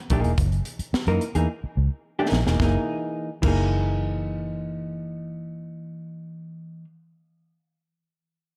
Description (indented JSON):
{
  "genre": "funk",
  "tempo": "108 BPM",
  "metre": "4/4",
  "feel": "straight",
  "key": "F# mixolydian",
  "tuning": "A4 = 439 Hz",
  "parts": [
    { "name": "hollow-body jazz guitar", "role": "accompaniment", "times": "0.1-6.8 s", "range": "E3 to A#4", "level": "-30 LUFS", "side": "equal", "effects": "none" },
    { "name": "vintage muted fingered electric bass", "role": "bass", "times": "0.1-6.3 s", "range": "E1 to F#2", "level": "-26 LUFS", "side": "equal", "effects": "tube saturation" },
    { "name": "crisp fusion drum kit", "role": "drums", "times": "0.1-3.6 s", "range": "crash cymbal, hi-hat, kick drum, snare drum", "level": "-29 LUFS", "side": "equal", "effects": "none" }
  ],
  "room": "light reverb, small room ambience",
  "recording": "dark, warm production",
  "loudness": "-25 LUFS",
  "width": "mono",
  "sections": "0.0-2.6 A section; 2.6-4.8 B section",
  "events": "drum fill 1.5-2.6",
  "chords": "0.0 F#13"
}